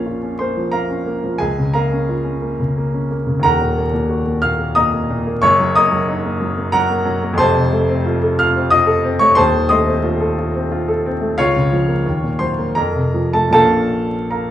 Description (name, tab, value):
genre	classical, romantic character piece for solo piano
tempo	74-94 BPM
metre	3/4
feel	rubato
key	Bb minor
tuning	A4 = 440 Hz
part	warm baby grand piano	solo	0.0-14.5 s	Eb1 to F6	-14 LUFS	equal	none
room	moderate large studio reverb, RT60 1.2 s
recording	vinyl crackle, small room ambience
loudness	-14 LUFS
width	side -11 dB against mid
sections	0.0-14.5 A section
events	none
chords	0.0 Bbm; 1.4 Bbm/Db; 3.4 Ebm; 5.4 Ebm/Gb; 7.4 F; 9.4 F7/Eb; 11.4 Bbm/Db; 12.0 Ebm; 12.8 F; 13.5 Bbm